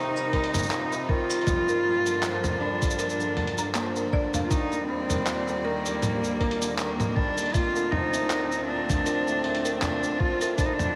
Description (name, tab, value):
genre	folktronica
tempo	79 BPM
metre	4/4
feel	swing 56% on 16ths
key	Bb major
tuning	A4 = 440 Hz
part	warm cello	melody	0.0-11.0 s	Bb3 to F4	-30 LUFS	equal	vintage 12-bit sampler grit, tape echo
part	clear string quartet	sustained chords	0.0-11.0 s	D2 to D5	-37 LUFS	equal	none
part	hammered dulcimer	arpeggios	0.0-11.0 s	A2 to G3	-35 LUFS	equal	tape echo
part	lo-fi sampler-style drum kit	drums	0.2-10.9 s	handclaps, hi-hat, shaker, toms	-34 LUFS	equal	none
part	buzzing marimba with medium hard mallets	second line	0.3-10.6 s	Bb3 to Bb5	-38 LUFS	equal	none
part	electronic kick drum	drums	0.3-10.8 s	none	-29 LUFS	equal	none
room	wet huge ambient reverb, RT60 8.5 s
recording	dreamy mix soaked in reverb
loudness	-26 LUFS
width	mono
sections	0.0-11.0 A section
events	none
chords	0.0 Cm7; 1.5 Gm7; 4.5 Ebmaj7; 7.5 Bbmaj7/D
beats	0.71 | 1.47 2.23 2.99 3.75 | 4.50 5.26 6.02 6.78 | 7.54 8.30 9.06 9.82 | 10.58